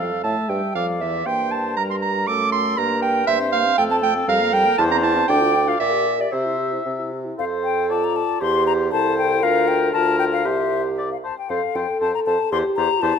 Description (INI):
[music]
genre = quick classical-period movement for wind quintet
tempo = 118 BPM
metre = 2/4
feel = rubato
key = F major from 3.3 s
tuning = A4 = 440 Hz
[part]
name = mellow hollow silver concert flute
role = melody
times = 0.0-13.2 s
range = C5 to D6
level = -24 LUFS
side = left 10 dB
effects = none
[part]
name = mellow oboe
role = second line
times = 0.0-13.1 s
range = A4 to E5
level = -26 LUFS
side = left 4 dB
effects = none
[part]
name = dark French horn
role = accompaniment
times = 0.0-13.2 s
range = E3 to Bb4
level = -25 LUFS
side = equal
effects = none
[part]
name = warm clarinet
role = accompaniment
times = 0.0-13.1 s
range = E4 to D6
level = -22 LUFS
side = right 8 dB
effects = none
[part]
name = mellow bassoon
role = bass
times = 0.0-13.1 s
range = C2 to C3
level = -25 LUFS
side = right 2 dB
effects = none
[sound]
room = moderate concert hall reverb, RT60 1.8 s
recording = close, detailed microphones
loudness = -18 LUFS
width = side -7 dB against mid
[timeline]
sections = 0.0-7.4 A section; 7.4-13.2 B section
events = none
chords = 0.2 A5; 0.8 Dm/F; 1.3 Gm; 2.3 D7/F#; 2.8 Gm; 3.3 C7/G; 3.8 F; 4.3 Gm7/F; 4.8 C/E; 5.3 Dm; 5.8 Gm/Bb; 6.3 C; 7.4 F; 8.4 C/E; 9.4 Bb/D; 10.5 C; 11.5 F; 12.5 C/E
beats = | 0.24 0.76 | 1.27 1.77 | 2.28 2.78 | 3.28 3.78 | 4.28 4.79 | 5.29 5.80 | 6.33 6.86 | 7.39 7.91 | 8.42 8.93 | 9.43 9.94 | 10.45 10.98 | 11.50 12.01 | 12.52 13.02